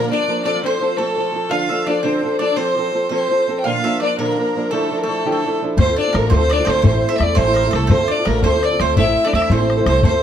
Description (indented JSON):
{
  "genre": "celtic folk, Celtic jig",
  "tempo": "113 BPM (dotted quarters)",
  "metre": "6/8",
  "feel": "straight",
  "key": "D minor",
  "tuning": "A4 = 443 Hz",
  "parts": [
    { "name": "dark fiddle", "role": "melody", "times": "0.0-10.2 s", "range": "G4 to G5", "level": "-20 LUFS", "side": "left 1 dB", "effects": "plate reverb" },
    { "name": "mandolin", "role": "second line", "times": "0.0-10.2 s", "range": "A4 to F5", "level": "-27 LUFS", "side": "right 4 dB", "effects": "tape echo" },
    { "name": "sitar", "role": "second line", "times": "0.0-10.2 s", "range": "A3 to F4", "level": "-25 LUFS", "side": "left 5 dB", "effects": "none" },
    { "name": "fingerpicked old ladder-braced acoustic guitar", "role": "accompaniment", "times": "0.0-10.2 s", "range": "A2 to Bb4", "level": "-20 LUFS", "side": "right 3 dB", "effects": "none" },
    { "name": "upright bass", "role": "bass", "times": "5.8-10.2 s", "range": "A1 to E2", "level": "-19 LUFS", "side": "equal", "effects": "none" },
    { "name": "bodhran", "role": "percussion", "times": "5.8-10.1 s", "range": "none", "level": "-18 LUFS", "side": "left 2 dB", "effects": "none" }
  ],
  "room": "light reverb",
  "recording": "none",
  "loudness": "-15 LUFS",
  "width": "side -9 dB against mid",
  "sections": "0.0-5.8 A section; 5.8-10.2 B section",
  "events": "none",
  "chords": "0.4 F; 1.5 Dm; 2.6 F; 3.6 Bb; 4.7 Dmadd9; 5.8 Dm7; 6.8 Am; 7.9 Dm7; 9.0 Am"
}